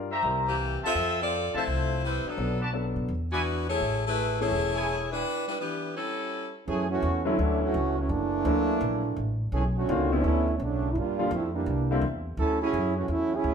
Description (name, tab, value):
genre	jazz, big band swing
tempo	168 BPM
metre	4/4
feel	swing 65% on 8ths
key	unclear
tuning	A4 = 440 Hz
part	bright upright piano	accompaniment	0.0-4.9, 7.3-12.0 s	D3 to E5	-30 LUFS	left 3 dB	none
part	upright bass	bass	0.0-13.5 s	E1 to B2	-30 LUFS	equal	none
part	warm trumpet section	stabs	0.1-5.2 s	E4 to Bb5	-31 LUFS	equal	none
part	edgy saxophone section	melody	0.5-6.5 s	E3 to E5	-28 LUFS	left 2 dB	none
part	brilliant trombone section	second line	6.7-13.5 s	C#3 to A4	-27 LUFS	right 4 dB	none
room	wet large studio reverb, RT60 1.0 s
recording	band playing live in one room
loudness	-25 LUFS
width	side -6 dB against mid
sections	0.0-6.7 A section; 6.7-13.5 B section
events	stop 5.2-6.7; trombone section solo 6.7-13.5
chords	0.2 C7; 1.0 Fmaj7; 2.4 Bm7; 3.1 E7; 3.8 Amaj7; 5.2 Em7; 6.0 A7; 6.7 Dmaj9; 8.1 F#7alt; 9.5 Bm11; 11.0 Gm7; 11.7 C9; 12.4 Dmaj9